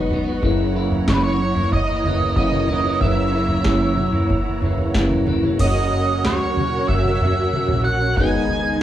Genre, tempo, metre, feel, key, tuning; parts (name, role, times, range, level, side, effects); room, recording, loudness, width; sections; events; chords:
psychedelic rock; 93 BPM; 4/4; straight; A4 = 439 Hz
string machine, violas; sustained chords; 0.0-8.8 s; B3 to C#6; -25 LUFS; right 3 dB; ensemble chorus
clean electric guitar; riff; 0.0-8.8 s; F#2 to G#4; -22 LUFS; equal; phaser
picked electric bass; bass; 0.0-8.8 s; F#1 to F#2; -25 LUFS; equal
booming analog drum machine; drums; 0.1-8.3 s; crash cymbal, kick drum, snare drum, toms; -23 LUFS; equal
octave-fuzz lead guitar; melody; 1.1-8.8 s; B4 to G#5; -23 LUFS; right 1 dB; distortion
wet large studio reverb, RT60 0.8 s; band playing live in one room; -17 LUFS; side -12 dB against mid
0.0-5.6 A section; 5.6-8.8 B section
0.4 F#7; 5.6 F#; 8.2 G#m